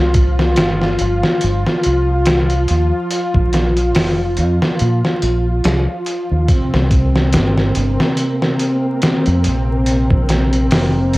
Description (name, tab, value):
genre	trip hop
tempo	71 BPM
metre	4/4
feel	swing 56% on 16ths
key	unclear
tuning	A4 = 443 Hz
part	string machine, cellos	sustained chords	0.0-11.2 s	C4 to F4	-18 LUFS	equal	ensemble chorus, cassette tape
part	deep dub fingered electric bass	bass	0.0-11.2 s	F1 to Bb2	-16 LUFS	equal	tube saturation
part	trip hop sampler-style drum kit	drums	0.1-11.2 s	hi-hat, kick drum, snare drum	-17 LUFS	equal	none
part	flickering grainy texture	texture	7.1-11.2 s	Bb3 to Bb4	-28 LUFS	right 1 dB	built-in reverb, cassette tape
room	light reverb, digital ambience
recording	home recording on cassette, vinyl crackle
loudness	-13 LUFS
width	side -20 dB against mid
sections	0.0-6.5 A section; 6.5-11.2 B section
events	kick drops out 4.8-6.5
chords	0.0 C5; 3.1 Bb5; 6.5 C5; 9.9 Bbsus2